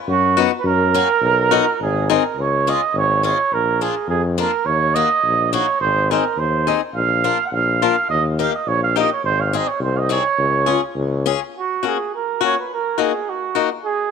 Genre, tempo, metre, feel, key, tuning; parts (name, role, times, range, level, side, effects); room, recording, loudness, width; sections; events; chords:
alpine folk, alpine dance band; 105 BPM; 2/4; straight; Db major; A4 = 439 Hz
warm flugelhorn; melody; 0.1-14.1 s; F#4 to Gb5; -18 LUFS; right 7 dB
warm tuba; bass; 0.1-11.3 s; Ab1 to F#2; -21 LUFS; left 3 dB
picked swing-style acoustic guitar; accompaniment; 0.4-13.7 s; Ab3 to G#4; -21 LUFS; left 15 dB
light reverb, studio reverb; 1960s-style stereo with parts hard left and right; -16 LUFS; side -6 dB against mid
0.0-2.4 A section; 2.4-11.5 B section; 11.5-14.1 C section
0.1 B/F#; 0.7 F#; 1.2 B; 1.8 G#; 2.4 Db; 3.5 Bb; 4.7 Ebm; 5.8 Ab; 7.0 Bb; 8.1 Eb; 9.2 Ab; 10.4 Db; 11.5 F#; 12.7 D#m